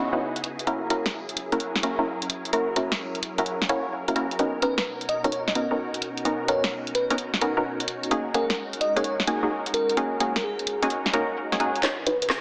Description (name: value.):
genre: UK garage, two-step garage.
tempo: 129 BPM.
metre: 4/4.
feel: swing 67% on 16ths.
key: unclear.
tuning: A4 = 438 Hz.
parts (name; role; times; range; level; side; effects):
soft string machine; sustained chords; 0.0-12.4 s; B2 to B4; -34 LUFS; equal; ensemble chorus.
punchy chord stab; stabs; 0.0-12.2 s; A#3 to C#5; -26 LUFS; equal; chorus, digital delay.
garage drum kit; drums; 0.4-12.4 s; handclaps, hi-hat, rim click, snare drum; -27 LUFS; equal; none.
bell-like FM electric piano; melody; 4.6-12.3 s; G#4 to D#5; -27 LUFS; equal; chorus, low-pass filter.
room: wet plate reverb, RT60 1.4 s, digital ambience.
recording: heavily compressed radio sound, small speaker sound.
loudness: -23 LUFS.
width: side -38 dB against mid.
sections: 0.0-11.8 A section.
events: drum fill 11.8-12.4.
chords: 0.0 C#m11; 0.7 F#7; 4.4 Bmaj9; 7.9 G#9sus4; 11.8 C#m11.